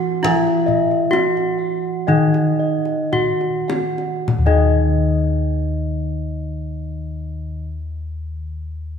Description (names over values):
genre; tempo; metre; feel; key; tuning
Javanese gamelan; 50-72 BPM; 4/4; straight; unclear; A4 = 439 Hz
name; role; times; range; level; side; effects
gamelan-type bronze metallophone; melody; 0.0-7.7 s; Eb4 to Gb4; -22 LUFS; right 1 dB; none
gamelan-type bronze metallophone; accompaniment; 0.0-7.7 s; Eb3 to Fb3+35c; -24 LUFS; right 1 dB; none
gamelan-type bronze metallophone; arpeggios; 0.0-7.6 s; Eb5 to Gb5; -26 LUFS; equal; none
gamelan-type bossed gongs; bass; 0.0-7.6 s; Eb2 to Fb4+35c; -22 LUFS; left 2 dB; none
gamelan-type bossed gongs; arpeggios; 0.2-7.7 s; Eb5 to Gb5; -26 LUFS; left 8 dB; none
kendang; percussion; 0.2-4.8 s; none; -27 LUFS; left 3 dB; none
room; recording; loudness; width
wet concert hall reverb, RT60 2.2 s; minimal, uncompressed stereo recording; -17 LUFS; side -7 dB against mid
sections
0.0-4.3 A section; 4.3-9.0 B section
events
slowing down 0.0-4.3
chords
none